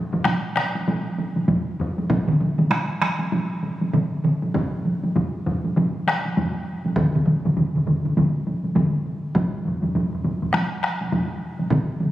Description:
japanese traditional, taiko drum ensemble; 99 BPM; 4/4; swing 60% on 16ths
taiko ensemble; percussion; 0.1-12.1 s; -23 LUFS; equal
taiko ensemble; percussion; 0.1-11.3 s; -27 LUFS; left 2 dB
solo taiko drums; percussion; 2.1-11.9 s; -30 LUFS; right 1 dB
taiko ensemble; percussion; 2.3-12.1 s; -22 LUFS; right 1 dB
wet concert hall reverb, RT60 2.4 s; recorded on a phone in the room, studio reverb; -20 LUFS; side -14 dB against mid
0.0-9.4 A section; 9.4-12.1 B section
speeding up 0.0-12.1

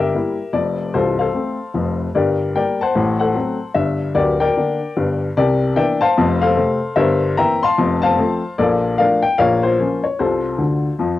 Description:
jazz, stride piano; 149 BPM; 4/4; swing 62% on 8ths; F major; A4 = 440 Hz
warm upright piano; solo; 0.0-11.2 s; C1 to C6; -15 LUFS; left 3 dB; cassette tape
wet booth ambience, RT60 0.2 s; home recording on cassette; -15 LUFS; side -14 dB against mid
0.0-11.2 A section
upright piano fill 10.6-11.2
0.0 Edim/G; 0.5 F; 2.1 Gm; 2.9 F#dim/A; 3.8 Gm; 5.4 C9; 6.2 F; 7.0 C7/G; 7.8 F; 8.6 Bbmaj7; 9.4 Bbm; 10.2 F/C

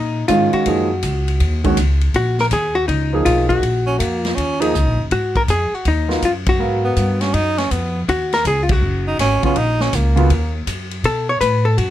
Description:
jazz, small-group swing and bop; 162 BPM; 4/4; swing 66% on 8ths; Eb minor; A4 = 441 Hz
hollow-body jazz guitar; melody; 0.0-11.9 s; Eb4 to Db5; -19 LUFS; left 2 dB
upright bass; bass; 0.0-11.9 s; Gb1 to B2; -19 LUFS; equal
warm baby grand piano; accompaniment; 0.3-7.2, 9.4-10.3 s; Db3 to F5; -19 LUFS; right 3 dB
swinging big-band drum kit; drums; 0.3-11.9 s; hi-hat, kick drum, ride cymbal, snare drum; -24 LUFS; left 1 dB
clear tenor saxophone; second line; 3.9-10.7 s; Bb3 to Eb4; -20 LUFS; right 2 dB
light reverb; -15 LUFS; side -12 dB against mid
0.0-11.9 A section
band accent 6.4, 8.6
0.0 Ebm7; 5.1 Abm7; 8.1 Ebm7; 11.0 B7(no3)

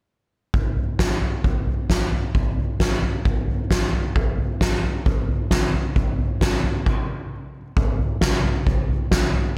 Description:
folk; 133 BPM; 4/4; straight
soft-mallet drum kit; drums; 0.5-9.4 s; crash cymbal, kick drum, snare drum, toms; -22 LUFS; equal
moderate concert hall reverb, RT60 1.8 s; -22 LUFS; mono
0.5-7.8 A section; 7.8-9.6 B section
stop 6.9-7.8

